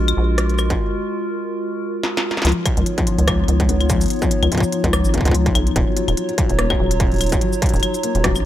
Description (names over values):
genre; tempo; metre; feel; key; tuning
IDM; 145 BPM; 4/4; swing 56% on 16ths; unclear; A4 = 440 Hz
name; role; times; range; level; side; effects
warbly tape-like pad; sustained chords; 0.0-8.5 s; F#3 to C#5; -24 LUFS; equal; chorus, built-in reverb, sidechain pumping
deep acid bass; bass; 0.0-8.4 s; D#1 to C#2; -18 LUFS; equal; none
industrial drum kit; drums; 0.1-8.4 s; claves, hi-hat, rim click, shaker, snare drum; -23 LUFS; left 1 dB; studio reverb
electronic kick drum; drums; 0.7-8.3 s; none; -20 LUFS; equal; distortion, studio reverb
felt-muted upright piano; arpeggios; 2.4-8.3 s; E#3 to F#4; -24 LUFS; left 4 dB; ping-pong delay
room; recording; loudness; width
digital ambience; none; -16 LUFS; side -12 dB against mid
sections
0.0-2.4 A section; 2.4-8.5 B section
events
break 0.8-2.4; drum fill 2.0-2.4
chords
0.0 F#maj9/A#; 2.4 C#9; 5.8 D#m9